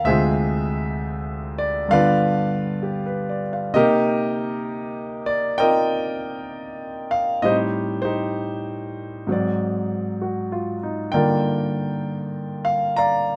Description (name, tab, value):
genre	solo jazz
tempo	65 BPM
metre	4/4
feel	swing 66% on 8ths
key	unclear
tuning	A4 = 440 Hz
part	clear concert grand piano	solo	0.0-13.4 s	D2 to Bb5	-23 LUFS	equal	none
room	moderate club ambience, RT60 0.5 s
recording	none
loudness	-23 LUFS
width	mono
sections	0.0-13.4 A section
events	none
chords	0.1 Dm7b5; 1.9 G7; 3.7 Cm7; 7.4 Am7b5; 9.3 Ab7#11; 11.1 Gm7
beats	| 0.06 0.98 1.91 2.83 | 3.75 4.67 5.59 6.51 | 7.44 8.36 9.28 10.20 | 11.12 12.04 12.97